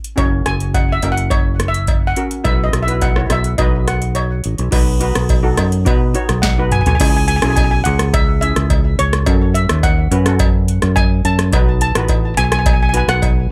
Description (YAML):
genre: calypso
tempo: 106 BPM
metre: 4/4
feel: straight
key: unclear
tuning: A4 = 440 Hz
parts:
  - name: booming analog drum machine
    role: drums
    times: 0.0-13.4 s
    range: crash cymbal, hi-hat, kick drum, rim click, snare drum, toms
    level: -19 LUFS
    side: equal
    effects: overdrive
  - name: steel pan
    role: melody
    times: 0.2-13.5 s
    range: C#5 to A5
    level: -23 LUFS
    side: equal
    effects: digital delay
  - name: steel pan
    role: accompaniment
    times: 0.2-13.4 s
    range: C#4 to C#5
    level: -26 LUFS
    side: equal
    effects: none
  - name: fingered electric bass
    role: bass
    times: 0.2-13.5 s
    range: F#1 to B2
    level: -19 LUFS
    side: equal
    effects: none
  - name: cowbell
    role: percussion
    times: 0.2-13.4 s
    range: none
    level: -28 LUFS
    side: equal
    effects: none
room: light reverb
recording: none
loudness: -15 LUFS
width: mono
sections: 0.0-4.7 A section; 4.7-7.0 B section; 7.0-13.5 C section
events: steel pan solo 0.0-4.7; break 4.2-4.7; drum fill 6.4-7.0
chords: 0.2 F#; 2.5 Bsus4; 3.6 B; 7.0 C#m7; 9.3 F#m; 11.5 B7